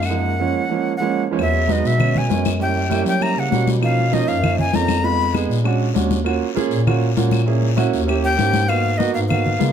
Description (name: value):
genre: Afro-Cuban jazz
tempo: 197 BPM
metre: 4/4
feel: straight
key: F# major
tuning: A4 = 436 Hz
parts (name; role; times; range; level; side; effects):
- breathy bright jazz flute; melody; 0.0-5.3, 8.2-9.7 s; D#5 to Cb6; -22 LUFS; left 2 dB; none
- breathy bass clarinet; bass; 0.0-9.7 s; D#2 to F#3; -20 LUFS; left 1 dB; none
- claves; percussion; 0.0-9.5 s; none; -32 LUFS; left 7 dB; none
- guiro; percussion; 0.0-9.7 s; none; -35 LUFS; left 8 dB; none
- warm grand piano; accompaniment; 0.1-9.7 s; E#3 to Ab4; -21 LUFS; right 8 dB; none
- congas; percussion; 1.4-9.7 s; none; -24 LUFS; left 6 dB; none
room: moderate large studio reverb, RT60 0.9 s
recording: none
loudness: -16 LUFS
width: side -8 dB against mid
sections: 0.0-1.4 A section; 1.4-9.7 B section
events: none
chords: 0.0 F#maj9; 1.4 E6; 2.6 F#7b9; 3.8 Bmaj9#11; 5.0 Fm7b5; 5.7 A#7alt; 6.3 D#m9 (rootless); 7.5 A#m7b5; 8.1 D#7b9; 8.7 G#m9